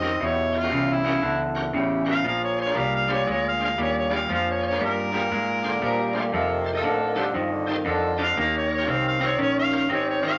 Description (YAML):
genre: blues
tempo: 118 BPM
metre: 4/4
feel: swing 64% on 8ths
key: unclear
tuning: A4 = 440 Hz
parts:
  - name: mellow harmonica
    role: melody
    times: 0.0-10.4 s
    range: E4 to F5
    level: -28 LUFS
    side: equal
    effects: overdrive
  - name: bright tonewheel organ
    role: accompaniment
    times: 0.0-10.3 s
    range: Db4 to Eb5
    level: -35 LUFS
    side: equal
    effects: slow rotary speaker, overdrive, chorus vibrato
  - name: electric guitar through a small old amp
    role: riff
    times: 0.0-10.4 s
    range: E2 to Db4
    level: -27 LUFS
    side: equal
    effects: none
  - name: mellow horn section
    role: stabs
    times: 0.0-10.3 s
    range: C#4 to C5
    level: -34 LUFS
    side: equal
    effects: none
  - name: vintage muted fingered electric bass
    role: bass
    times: 0.0-10.4 s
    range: Ab1 to Bb2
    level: -36 LUFS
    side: equal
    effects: none
  - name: breathy tenor saxophone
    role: second line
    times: 5.7-8.1 s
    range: D3 to Bb3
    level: -32 LUFS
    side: equal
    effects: none
room: wet studio reverb, RT60 0.6 s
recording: nothing above 7.8 kHz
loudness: -24 LUFS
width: mono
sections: 0.0-10.4 A section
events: none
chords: 0.2 Edim7; 2.2 Bb7; 6.3 F7; 8.4 Eb7